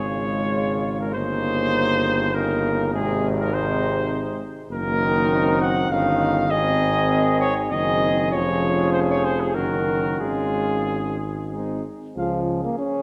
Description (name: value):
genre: classical, brass quintet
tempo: 90-103 BPM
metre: 3/4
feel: rubato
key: Ab major, Db major from 4.7 s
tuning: A4 = 440 Hz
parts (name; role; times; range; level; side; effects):
- dark cornet; melody; 0.0-12.4 s; Ab4 to Gb5; -26 LUFS; equal; none
- mellow flugelhorn; second line; 0.0-13.0 s; Eb4 to Ab4; -32 LUFS; equal; none
- mellow French horn; accompaniment; 0.0-12.4 s; Ab3 to Ab4; -31 LUFS; equal; none
- warm euphonium; accompaniment; 0.0-13.0 s; C3 to Db4; -30 LUFS; equal; none
- warm bass trombone; bass; 0.0-12.7 s; F1 to Db2; -28 LUFS; equal; none
room: wet concert hall reverb, RT60 2.1 s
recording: none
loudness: -22 LUFS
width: mono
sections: 0.0-12.2 A section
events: none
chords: 0.0 Db/Ab; 1.1 Eb7/G; 2.9 Ab; 4.7 Ebm/Gb; 5.9 Eb7/G; 6.5 Ab; 7.7 Ab7/Gb; 8.3 Db/F; 9.6 Ebm7/Gb; 10.2 Db/Ab; 11.5 Ab; 12.2 Db